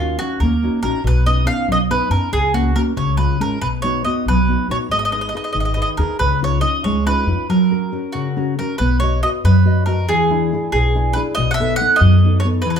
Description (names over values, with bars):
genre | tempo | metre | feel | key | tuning
italian folk, Italian serenade | 93 BPM (dotted quarters) | 6/8 | straight | F# major, B major from 8.8 s | A4 = 441 Hz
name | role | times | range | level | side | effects
mandolin | melody | 0.0-12.8 s | E#4 to F#5 | -20 LUFS | right 2 dB | none
nylon-string guitar | accompaniment | 0.0-12.8 s | B2 to D#5 | -20 LUFS | left 1 dB | none
upright bass | bass | 0.0-12.8 s | G#1 to F#2 | -18 LUFS | equal | none
room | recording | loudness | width
moderate large studio reverb, RT60 0.8 s | band playing live in one room | -15 LUFS | side -7 dB against mid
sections
0.0-8.8 A section; 8.8-12.8 B section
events
none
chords
0.0 D#m7; 1.0 Badd9; 2.3 F#/C#; 3.0 C#; 3.6 B; 4.9 G#m; 6.2 C#add9; 7.5 F#; 8.8 B; 10.1 E7; 11.4 B7